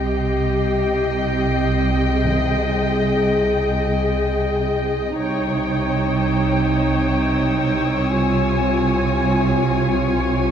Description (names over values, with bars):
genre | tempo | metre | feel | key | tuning
cinematic, suspense film score | free time | none | none | unclear | A4 = 440 Hz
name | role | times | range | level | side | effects
muted studio violin section | melody | 0.0-10.5 s | G5 to Ab5 | -27 LUFS | left 3 dB | none
muted chamber violin section | second line | 0.0-10.5 s | Db5 to Eb5 | -26 LUFS | left 2 dB | none
muted chamber viola section | accompaniment | 0.0-10.5 s | Eb4 to Ab4 | -22 LUFS | left 1 dB | none
muted chamber cello section | bass | 0.0-10.5 s | C3 | -24 LUFS | right 4 dB | none
muted chamber double bass section | bass | 0.0-10.5 s | C2 | -22 LUFS | right 1 dB | none
muted chamber violin section | texture | 0.0-10.5 s | Eb6 to C7 | -37 LUFS | left 6 dB | none
timpani | percussion | 2.2-3.3 s | C3 | -28 LUFS | left 2 dB | none
room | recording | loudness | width
moderate scoring stage reverb, RT60 1.5 s | dark, warm production | -17 LUFS | side -8 dB against mid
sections
0.0-10.5 A section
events
none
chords
0.0 Cm; 2.2 Abmaj7/C; 5.2 Eb7/C; 8.2 Db/C